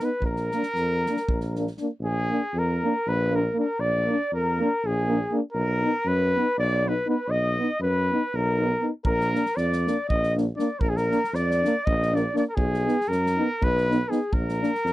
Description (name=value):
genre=balkan folk, Balkan brass band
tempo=239 BPM (eighths)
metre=7/8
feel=straight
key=Bb phrygian dominant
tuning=A4 = 436 Hz
part: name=warm trumpet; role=melody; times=0.0-14.9 s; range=Ab4 to Eb5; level=-27 LUFS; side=right 1 dB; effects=none
part: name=mellow flugelhorn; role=second line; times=0.0-14.9 s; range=Ab4 to Eb5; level=-31 LUFS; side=left 3 dB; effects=none
part: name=warm French horn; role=accompaniment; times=0.0-14.7 s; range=D4 to D#4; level=-28 LUFS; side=left 4 dB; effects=none
part: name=warm euphonium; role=accompaniment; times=0.0-14.7 s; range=Bb3 to B3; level=-28 LUFS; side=right 4 dB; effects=none
part: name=natural country drum kit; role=percussion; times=0.0-1.8, 9.0-14.9 s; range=kick drum, snare drum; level=-29 LUFS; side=equal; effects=none
part: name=warm tuba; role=bass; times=0.2-14.9 s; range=Bb1 to F#2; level=-26 LUFS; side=equal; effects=none
room=little or no reverb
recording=dry, close 1970s-style studio recording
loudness=-22 LUFS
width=side -16 dB against mid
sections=0.0-2.0 A section; 2.0-14.9 A section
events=none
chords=0.2 Bb; 5.5 B; 9.1 Bb; 12.6 B; 14.3 Bb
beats=| 0.22 0.48 0.73 0.99 1.24 1.50 1.75 | 2.00 2.26 2.51 2.76 3.02 3.27 3.52 | 3.78 4.03 4.28 4.53 4.79 5.04 5.29 | 5.54 5.79 6.04 6.29 6.55 6.80 7.05 | 7.30 7.55 7.80 8.05 8.30 8.55 8.81 | 9.06 9.31 9.56 9.81 10.06 10.31 10.56 | 10.81 11.06 11.31 11.56 11.81 12.06 12.32 | 12.57 12.82 13.07 13.32 13.57 13.82 14.07 | 14.32 14.57 14.82